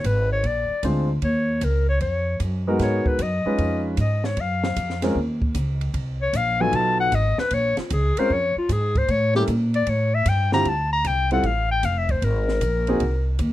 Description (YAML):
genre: jazz, small-group swing and bop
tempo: 153 BPM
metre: 4/4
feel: swing 67% on 8ths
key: unclear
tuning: A4 = 440 Hz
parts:
  - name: clear clarinet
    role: melody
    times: 0.0-13.4 s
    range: F4 to Bb5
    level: -23 LUFS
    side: left 3 dB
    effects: none
  - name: upright bass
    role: bass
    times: 0.0-13.5 s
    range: F1 to Bb2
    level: -23 LUFS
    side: equal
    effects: none
  - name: compact cocktail drum kit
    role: drums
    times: 0.0-13.5 s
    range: hi-hat, kick drum, ride cymbal, snare drum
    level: -31 LUFS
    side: equal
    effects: none
  - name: warm grand piano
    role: accompaniment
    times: 0.8-13.0 s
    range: D3 to C5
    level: -24 LUFS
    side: equal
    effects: none
room: little or no reverb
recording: close, detailed microphones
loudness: -20 LUFS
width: side -14 dB against mid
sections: 0.0-10.7 A section; 10.7-13.5 A section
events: clarinet solo 0.0-13.5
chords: 0.4 Bb7; 1.2 Ebm7; 2.8 Abm7; 3.6 Db7; 4.4 Gbmaj7(no3); 5.9 Cm7b5; 6.7 B7#11; 7.5 Bbm7; 9.1 A7b9; 10.7 Dm11; 12.2 G#add9